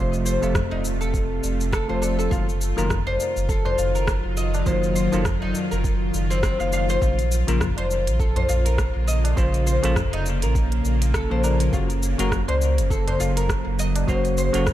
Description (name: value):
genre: organic downtempo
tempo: 102 BPM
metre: 4/4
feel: swing 57% on 16ths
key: unclear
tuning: A4 = 440 Hz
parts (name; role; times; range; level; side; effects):
- bell-like tine electric piano; accompaniment; 0.0-14.7 s; C3 to Gb4; -28 LUFS; moving between left 6 dB and right 3 dB; auto-pan, sidechain pumping, low-pass filter, ping-pong delay
- bowed-like drone; sustained chords; 0.0-14.7 s; C3 to F4; -29 LUFS; equal; built-in reverb, sidechain pumping
- oud; arpeggios; 0.0-14.7 s; C4 to F5; -26 LUFS; left 2 dB; ping-pong delay
- warm sub bass; bass; 0.0-14.7 s; Eb1 to Db2; -23 LUFS; equal; sidechain pumping
- organic electronic drum kit; drums; 0.1-14.7 s; cabasa, hi-hat, rim click; -31 LUFS; equal; overdrive, studio reverb
- electronic kick drum; drums; 0.5-14.7 s; none; -25 LUFS; equal; overdrive, studio reverb
- tabla; percussion; 0.5-14.7 s; none; -32 LUFS; left 1 dB; none
room: little or no reverb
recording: none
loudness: -20 LUFS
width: side -13 dB against mid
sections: 0.0-14.7 A section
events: filter sweep on tine electric piano 0.0-14.7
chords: 0.0 F; 2.3 Ebmadd9/Gb; 7.0 Bbm; 11.7 Gb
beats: 0.55 1.14 1.73 | 2.31 2.90 3.49 4.08 | 4.67 5.26 5.84 6.43 | 7.02 7.61 8.20 8.79 | 9.37 9.96 10.55 11.14 | 11.73 12.31 12.90 13.49 | 14.08 14.67